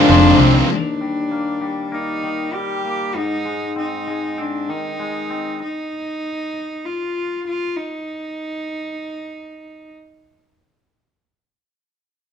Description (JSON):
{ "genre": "rock", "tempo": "98 BPM", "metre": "4/4", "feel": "straight", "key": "Eb major", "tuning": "A4 = 440 Hz", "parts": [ { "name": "rich cello", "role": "melody", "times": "0.0-9.9 s", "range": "D4 to G4", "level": "-22 LUFS", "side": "left 1 dB", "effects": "none" }, { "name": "hand-pumped harmonium", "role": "sustained chords", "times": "0.0-0.7 s", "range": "F4 to Ab5", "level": "-24 LUFS", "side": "left 2 dB", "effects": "none" }, { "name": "electric guitar through a small old amp", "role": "arpeggios", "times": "0.0-0.7 s", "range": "Bb4 to C5", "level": "-22 LUFS", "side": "left 1 dB", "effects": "none" }, { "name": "twangy electric guitar", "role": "arpeggios", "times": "0.0-5.6 s", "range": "Eb2 to C4", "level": "-26 LUFS", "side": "left 3 dB", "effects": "slapback echo" }, { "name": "overdriven electric guitar", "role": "riff", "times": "0.0-0.7 s", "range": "F2 to Eb4", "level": "-16 LUFS", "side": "right 10 dB", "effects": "none" }, { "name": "thick fuzz guitar", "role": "riff", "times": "0.0-0.7 s", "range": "F2 to Eb4", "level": "-18 LUFS", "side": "left 10 dB", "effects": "distortion" }, { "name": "fingered electric bass", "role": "bass", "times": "0.1-0.6 s", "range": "F1 to C2", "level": "-15 LUFS", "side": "equal", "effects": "none" } ], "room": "moderate stone room reverb, RT60 1.2 s", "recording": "band playing live in one room", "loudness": "-19 LUFS", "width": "side -8 dB against mid", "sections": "0.7-10.5 A section; 10.5-12.3 B section", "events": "none", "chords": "0.0 Fm7; 0.7 Ebmaj7; 3.2 Ab; 5.6 N.C." }